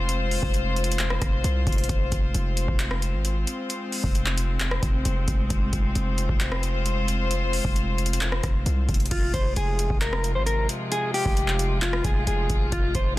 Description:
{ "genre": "hip hop, trap", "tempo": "133 BPM", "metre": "4/4", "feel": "half-time", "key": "F minor", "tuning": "A4 = 439 Hz", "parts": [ { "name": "warm studio string section", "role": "sustained chords", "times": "0.0-13.2 s", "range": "C3 to C5", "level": "-30 LUFS", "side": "left 2 dB", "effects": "none" }, { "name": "hard-hitting 808-style bass", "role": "bass", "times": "0.0-13.2 s", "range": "F1 to C2", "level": "-25 LUFS", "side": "equal", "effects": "none" }, { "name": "booming analog drum machine", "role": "drums", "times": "0.1-13.1 s", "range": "crash cymbal, handclaps, hi-hat, kick drum, rim click", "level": "-26 LUFS", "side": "equal", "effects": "overdrive" }, { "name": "mellow electric guitar", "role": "melody", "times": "9.1-13.2 s", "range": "F4 to C5", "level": "-27 LUFS", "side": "left 1 dB", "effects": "digital delay" } ], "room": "little or no reverb", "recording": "dense, heavily limited modern master", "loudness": "-22 LUFS", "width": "side -17 dB against mid", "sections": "0.0-9.1 A section; 9.1-13.2 B section", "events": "none", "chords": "0.0 Fm", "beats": "| 0.09 0.54 0.99 1.44 | 1.89 2.35 2.80 3.25 | 3.70 4.15 4.60 5.05 | 5.50 5.95 6.41 6.86 | 7.31 7.76 8.21 8.66 | 9.11 9.56 10.01 10.46 | 10.92 11.37 11.82 12.27 | 12.72 13.17" }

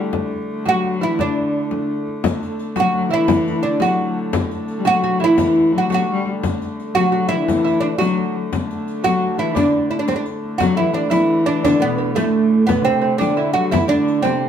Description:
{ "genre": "medieval dance", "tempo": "115 BPM (dotted quarters)", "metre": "6/8", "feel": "straight", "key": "D mixolydian", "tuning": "A4 = 440 Hz", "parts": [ { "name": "dark hurdy-gurdy", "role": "drone", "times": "0.0-14.5 s", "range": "D3 to A3", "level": "-26 LUFS", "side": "equal", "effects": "none" }, { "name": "frame drum", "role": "percussion", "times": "0.1-14.4 s", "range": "none", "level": "-23 LUFS", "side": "left 4 dB", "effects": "none" }, { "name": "oud", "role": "melody", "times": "0.7-14.5 s", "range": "A3 to F#4", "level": "-18 LUFS", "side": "right 3 dB", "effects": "none" }, { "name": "dark viola da gamba", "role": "second line", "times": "0.7-14.5 s", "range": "A2 to G3", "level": "-23 LUFS", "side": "left 7 dB", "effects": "none" }, { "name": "lute", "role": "second line", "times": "0.7-14.5 s", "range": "A3 to F#4", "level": "-25 LUFS", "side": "right 5 dB", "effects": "none" }, { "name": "riq", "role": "percussion", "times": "2.2-14.4 s", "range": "none", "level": "-29 LUFS", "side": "left 7 dB", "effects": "none" } ], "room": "wet studio reverb, RT60 0.7 s", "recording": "band playing live in one room", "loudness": "-16 LUFS", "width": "side -8 dB against mid", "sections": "0.0-2.2 A section; 2.2-10.6 A section; 10.6-14.5 B section", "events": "none", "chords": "none", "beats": "| 0.13 0.66 | 1.18 1.71 | 2.24 2.76 | 3.29 3.81 | 4.34 4.86 | 5.39 5.91 | 6.43 6.96 | 7.48 8.00 | 8.53 9.05 | 9.57 10.09 | 10.61 11.13 | 11.65 12.17 | 12.69 13.21 | 13.72 14.24" }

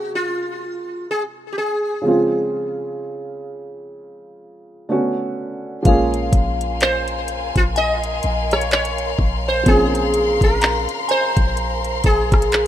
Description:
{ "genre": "contemporary R&B", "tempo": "63 BPM", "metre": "4/4", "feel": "swing 58% on 16ths", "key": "Bb minor", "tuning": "A4 = 440 Hz", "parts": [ { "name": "sitar", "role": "melody", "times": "0.0-12.7 s", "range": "F4 to Eb5", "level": "-21 LUFS", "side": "equal", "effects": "ping-pong delay" }, { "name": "felt-muted upright piano", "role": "accompaniment", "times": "0.0-12.7 s", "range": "C3 to F5", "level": "-22 LUFS", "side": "right 2 dB", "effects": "none" }, { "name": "warm studio string section", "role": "sustained chords", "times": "5.9-12.7 s", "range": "Bb4 to C6", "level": "-26 LUFS", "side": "left 2 dB", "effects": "none" }, { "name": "clean 808-style bass", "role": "bass", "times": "5.9-12.7 s", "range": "Bb1", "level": "-24 LUFS", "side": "equal", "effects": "none" }, { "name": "smooth R&B drum kit", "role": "drums", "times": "5.9-12.7 s", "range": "handclaps, hi-hat, kick drum, rim click", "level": "-18 LUFS", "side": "equal", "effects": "none" }, { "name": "glassy synth bell", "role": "texture", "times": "5.9-12.7 s", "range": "F5 to Bb5", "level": "-27 LUFS", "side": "left 3 dB", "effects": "wide subtle chorus, ping-pong delay" } ], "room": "small room ambience", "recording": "rough home demo mix", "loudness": "-17 LUFS", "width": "side -11 dB against mid", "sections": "0.0-12.7 A section", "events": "none", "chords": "0.0 Ab13/C; 2.0 Dbmaj7; 4.9 Bm9; 5.9 Bbm9", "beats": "0.14 1.09 | 2.05 3.00 3.95 4.90 | 5.86 6.81 7.76 8.71 | 9.66 10.62 11.57 12.52" }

